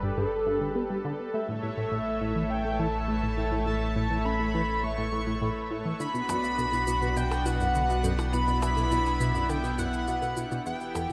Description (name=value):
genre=ambient, sequencer-driven space music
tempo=103 BPM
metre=4/4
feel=straight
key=unclear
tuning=A4 = 440 Hz
part: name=pulse-width lead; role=melody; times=0.0-11.1 s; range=A4 to C#6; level=-33 LUFS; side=equal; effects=chorus, delay
part: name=lush unison pad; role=sustained chords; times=0.0-11.1 s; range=E3 to E5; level=-35 LUFS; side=equal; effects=chorus
part: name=tight sequenced synth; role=riff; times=0.0-11.1 s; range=E2 to C#4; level=-35 LUFS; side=equal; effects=chorus, delay
part: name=round analog bass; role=bass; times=0.0-11.1 s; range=E1 to B1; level=-35 LUFS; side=equal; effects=none
part: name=bubbling stepped-filter texture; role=texture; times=0.3-11.1 s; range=B4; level=-50 LUFS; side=equal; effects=none
part: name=warbly dusty pluck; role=arpeggios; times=6.0-11.1 s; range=E4 to E5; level=-42 LUFS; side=equal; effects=none
part: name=shaker and percussion blips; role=percussion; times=6.0-11.1 s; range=none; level=-43 LUFS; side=equal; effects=delay
room=wet spring reverb, RT60 2.4 s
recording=echo-heavy mix, lossy compression artefacts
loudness=-28 LUFS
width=mono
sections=0.0-11.1 A section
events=fade-out 9.1-11.1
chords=0.0 Gadd9; 1.3 A; 6.0 Bm